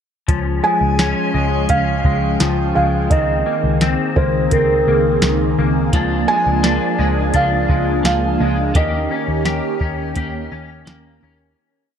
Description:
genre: dream pop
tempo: 85 BPM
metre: 4/4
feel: straight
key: Db lydian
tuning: A4 = 440 Hz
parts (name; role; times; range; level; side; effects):
- phased analog pad; sustained chords; 0.3-11.6 s; Eb3 to Ab4; -22 LUFS; right 1 dB; phaser, chorus, shimmer reverb
- semi-hollow electric guitar; arpeggios; 0.3-12.0 s; Eb3 to G4; -22 LUFS; left 6 dB; ensemble chorus, tape echo, shimmer reverb
- vintage muted picked electric bass; bass; 0.3-11.5 s; Db2 to Eb2; -20 LUFS; equal; none
- soft vintage rhythm box; drums; 0.3-11.0 s; hi-hat, kick drum, snare drum; -18 LUFS; equal; none
- felt-muted upright piano; melody; 0.6-11.2 s; Bb4 to Ab5; -20 LUFS; right 2 dB; tape echo, shimmer reverb
- clean electric guitar; accompaniment; 5.9-11.6 s; Eb3 to Bb4; -26 LUFS; right 3 dB; harmonic tremolo, lush chorus, shimmer reverb
room: light reverb, digital ambience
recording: dark, warm production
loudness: -14 LUFS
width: side -8 dB against mid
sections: 0.3-11.6 verse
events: fade-out 8.8-11.6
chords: 0.3 Db; 3.1 Abadd9/Db; 5.9 Bb7/Db; 8.8 Eb7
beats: | 0.28 0.99 1.69 2.40 | 3.10 3.81 4.52 5.22 | 5.93 6.63 7.34 8.05 | 8.75 9.46 10.16 10.87

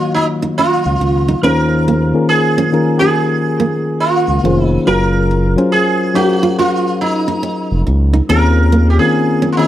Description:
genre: R&B, neo-soul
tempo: 70 BPM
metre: 4/4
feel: swing 63% on 16ths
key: unclear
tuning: A4 = 441 Hz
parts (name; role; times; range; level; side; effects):
- sitar; melody; 0.0-9.7 s; Eb4 to Bb4; -16 LUFS; right 2 dB; none
- reed electric piano; accompaniment; 0.0-9.7 s; Eb3 to F5; -16 LUFS; left 3 dB; none
- nylon-string guitar; second line; 0.2-9.6 s; Bb3 to Gb4; -19 LUFS; right 4 dB; none
- smooth gliding synth bass; bass; 0.9-9.0 s; F1 to Eb2; -14 LUFS; equal; none
room: light reverb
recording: dark, warm production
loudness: -11 LUFS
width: side -12 dB against mid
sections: 0.0-9.7 A section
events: none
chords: 0.0 Ebm7; 1.4 Bbm9/Eb; 4.9 Gbmaj7; 8.3 Bbm9/Eb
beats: 0.57 | 1.43 2.28 3.14 4.00 | 4.85 5.71 6.57 7.42 | 8.28 9.14

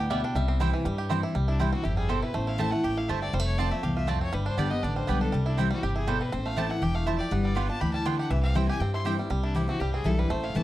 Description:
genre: bluegrass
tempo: 241 BPM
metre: 4/4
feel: straight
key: C major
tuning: A4 = 440 Hz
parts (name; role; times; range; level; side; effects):
- bluegrass banjo; melody; 0.0-10.6 s; E3 to G4; -34 LUFS; right 5 dB; analog delay
- lap resonator guitar; second line; 0.0-1.1 s; E5 to G5; -35 LUFS; left 5 dB; none
- picked steel-string acoustic guitar; accompaniment; 0.0-10.6 s; E2 to G4; -29 LUFS; left 2 dB; none
- upright bass; bass; 0.0-10.6 s; E1 to G2; -28 LUFS; equal; none
- mandolin; stabs; 0.1-9.2 s; A3 to A5; -34 LUFS; right 9 dB; none
- clear fiddle; melody; 1.5-10.6 s; D4 to C6; -35 LUFS; left 3 dB; analog delay
room: light reverb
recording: dark, warm production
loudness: -25 LUFS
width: side -14 dB against mid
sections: 0.0-1.3 A section; 1.3-9.3 B section; 9.3-10.6 B section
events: resonator guitar played with a steel bar solo 0.0-1.3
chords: 0.4 C; 2.3 Am; 3.3 F; 4.3 G; 5.3 C; 6.3 Am; 7.3 G7; 8.3 C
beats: 0.11 | 0.35 0.60 0.85 1.10 | 1.35 1.60 1.84 2.09 | 2.34 2.59 2.84 3.09 | 3.34 3.58 3.83 4.08 | 4.33 4.58 4.83 5.08 | 5.33 5.58 5.82 6.07 | 6.32 6.57 6.82 7.07 | 7.32 7.57 7.81 8.06 | 8.31 8.56 8.81 9.06 | 9.31 9.56 9.80 10.05 | 10.30 10.55

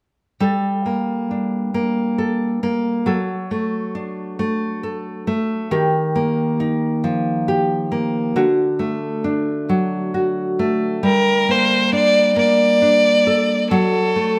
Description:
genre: pop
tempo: 45 BPM (dotted quarters)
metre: 6/8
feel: straight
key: G minor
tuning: A4 = 444 Hz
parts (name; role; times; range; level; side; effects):
- nylon-string guitar; accompaniment; 0.4-14.4 s; D3 to A4; -21 LUFS; equal; none
- rich violin; melody; 11.1-14.4 s; A4 to D5; -17 LUFS; equal; tape echo
room: moderate recital hall reverb, RT60 1.4 s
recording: none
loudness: -19 LUFS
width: mono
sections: 0.4-11.0 A section; 11.0-14.4 B section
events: none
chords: 0.4 Gmadd9; 3.1 D/F#; 5.7 Ebadd9; 8.4 D; 11.0 Gmadd9; 13.7 D/F#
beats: | 0.41 1.75 | 3.08 4.40 | 5.73 7.05 | 8.38 9.71 | 11.05 12.38 | 13.71

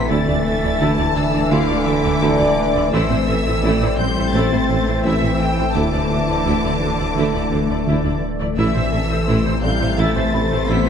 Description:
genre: cinematic, hybrid orchestral and electronic film score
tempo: 85 BPM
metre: 4/4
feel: straight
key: A minor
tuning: A4 = 441 Hz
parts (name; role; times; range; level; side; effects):
- rich symphonic violin section; melody; 0.0-10.9 s; D6 to B6; -28 LUFS; left 2 dB; none
- warm symphonic violin section; second line; 0.0-10.9 s; C5 to A5; -25 LUFS; left 3 dB; none
- clear French horn section; sustained chords; 0.0-10.9 s; C3 to D4; -25 LUFS; left 3 dB; none
- granular cloud pad; sustained chords; 0.0-10.9 s; E3 to D5; -26 LUFS; left 1 dB; built-in reverb
- harp-like synth pluck; arpeggios; 0.0-10.9 s; D3 to A4; -26 LUFS; left 4 dB; chorus
- punchy sub bass; bass; 0.0-10.9 s; D1 to A1; -26 LUFS; equal; none
- rich symphonic cello section; bass; 0.0-10.9 s; D3 to B3; -26 LUFS; right 2 dB; none
- felt-muted upright piano; texture; 0.0-10.9 s; E4 to C6; -33 LUFS; equal; none
- warm symphonic viola section; accompaniment; 0.1-10.9 s; A3 to D5; -25 LUFS; right 1 dB; none
- mellow tuba; bass; 0.1-10.8 s; A1 to D2; -24 LUFS; right 3 dB; none
- warm symphonic double bass section; bass; 0.1-10.8 s; A1 to D2; -26 LUFS; right 3 dB; none
room: wet scoring stage reverb, RT60 1.6 s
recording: dark, warm production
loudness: -16 LUFS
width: side -7 dB against mid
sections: 0.0-10.9 A section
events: none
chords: 0.1 Dsus2; 2.9 Am; 5.8 Dsus2; 8.6 Am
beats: | 0.11 0.81 1.52 2.22 | 2.93 3.64 4.34 5.05 | 5.75 6.46 7.17 7.87 | 8.58 9.28 9.99 10.69

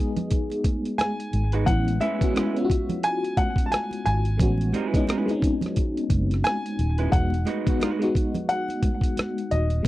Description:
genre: R&B, neo-soul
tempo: 88 BPM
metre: 4/4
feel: swing 59% on 16ths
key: unclear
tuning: A4 = 440 Hz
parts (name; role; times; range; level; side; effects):
- clear baby grand piano; melody; 0.0-9.9 s; D#5 to A5; -28 LUFS; left 1 dB; none
- FM electric piano with tremolo; accompaniment; 0.0-9.9 s; G#3 to G#4; -27 LUFS; left 2 dB; phaser
- dusty soul sampler-style drum kit; drums; 0.2-9.9 s; hi-hat, kick drum, rim click; -24 LUFS; equal; none
- congas; percussion; 0.2-9.9 s; none; -34 LUFS; right 3 dB; none
- vintage muted fingered electric bass; bass; 1.3-9.9 s; D#1 to A1; -23 LUFS; equal; none
- electric guitar through a small old amp; second line; 1.5-8.0 s; G#3 to B4; -28 LUFS; right 6 dB; none
room: little or no reverb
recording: dry, close 1970s-style studio recording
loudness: -22 LUFS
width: side -16 dB against mid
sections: 0.0-9.9 A section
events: none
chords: 0.0 Emaj9 (rootless); 1.7 Amaj9 (rootless); 7.1 Emaj9 (rootless)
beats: 0.30 0.98 | 1.67 2.35 3.03 3.71 | 4.39 5.08 5.76 6.44 | 7.12 7.80 8.48 9.17 | 9.85

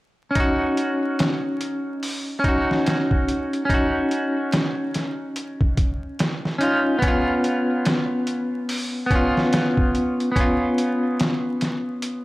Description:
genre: trip hop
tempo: 72 BPM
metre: 4/4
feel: swing 60% on 16ths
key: Eb minor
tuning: A4 = 442 Hz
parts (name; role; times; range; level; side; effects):
- clean electric guitar; accompaniment; 0.3-12.2 s; Cb4 to Gb4; -21 LUFS; equal; harmonic tremolo, vintage 12-bit sampler grit, tape echo
- trip hop sampler-style drum kit; drums; 0.4-12.2 s; hi-hat, kick drum, snare drum; -23 LUFS; equal; overdrive, studio ambience
room: moderate echo chamber reverb, RT60 2.1 s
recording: vinyl crackle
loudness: -20 LUFS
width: side -19 dB against mid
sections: 0.4-12.2 A section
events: none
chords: 0.4 Ebm7; 7.0 Db7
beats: | 0.36 1.19 2.02 2.86 | 3.69 4.53 5.36 6.19 | 7.03 7.86 8.69 9.53 | 10.36 11.19 12.03

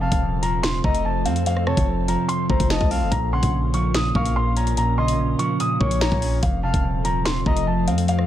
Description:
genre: hip hop, drill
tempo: 145 BPM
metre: 4/4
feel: half-time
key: Bb harmonic minor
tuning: A4 = 441 Hz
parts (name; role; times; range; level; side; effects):
- dark grand piano; melody; 0.0-8.2 s; F5 to Eb6; -26 LUFS; equal; low-pass filter
- breathy flute-like synth lead; second line; 0.0-7.7 s; C5 to Gb5; -31 LUFS; left 5 dB; chorus, digital delay
- clean electric guitar; accompaniment; 0.0-8.3 s; F2 to Db4; -25 LUFS; right 2 dB; low-pass filter
- glassy FM pad; sustained chords; 0.0-8.3 s; F3 to C5; -29 LUFS; left 2 dB; ensemble chorus, built-in reverb
- hard-hitting 808-style bass; bass; 0.0-8.3 s; Eb1 to F2; -24 LUFS; equal; none
- drill drum kit; drums; 0.1-8.3 s; hi-hat, kick drum, rim click, snare drum; -25 LUFS; equal; vintage 12-bit sampler grit
room: little or no reverb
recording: none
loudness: -19 LUFS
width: side -12 dB against mid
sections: 0.0-8.3 A section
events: none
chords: 0.0 F; 3.1 Bbm; 6.4 F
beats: 0.22 0.63 1.05 | 1.46 1.88 2.29 2.70 | 3.12 3.53 3.94 4.36 | 4.77 5.19 5.60 6.01 | 6.43 6.84 7.25 7.67 | 8.08

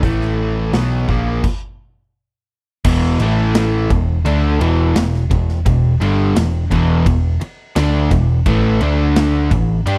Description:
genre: classic rock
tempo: 86 BPM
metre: 4/4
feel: straight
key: unclear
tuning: A4 = 440 Hz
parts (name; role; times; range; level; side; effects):
- picked steel-string acoustic guitar; accompaniment; 0.0-1.4 s; A2 to A4; -31 LUFS; equal; none
- cranked stack guitar; riff; 0.0-10.0 s; E2 to G4; -24 LUFS; equal; overdrive
- sludgy distorted guitar; riff; 0.0-10.0 s; E2 to G4; -24 LUFS; equal; overdrive
- hollow-body short-scale picked electric bass; bass; 0.0-10.0 s; E1 to G2; -20 LUFS; equal; none
- big rock drum kit; drums; 0.0-10.0 s; crash cymbal, hi-hat, kick drum, ride cymbal, snare drum; -22 LUFS; equal; none
- crunchy overdriven guitar; riff; 2.8-10.0 s; E2 to G4; -23 LUFS; equal; spring reverb
room: little or no reverb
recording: dry, close 1970s-style studio recording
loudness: -16 LUFS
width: mono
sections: 0.0-2.9 A section; 2.9-10.0 B section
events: stop 1.4-2.9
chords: 0.0 A5; 0.7 E; 2.9 E5; 3.2 A5; 3.9 E5; 8.5 A5; 8.8 D5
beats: | 0.04 0.74 1.45 2.15 | 2.85 3.55 4.26 4.96 | 5.66 6.36 7.06 7.76 | 8.46 9.16 9.87

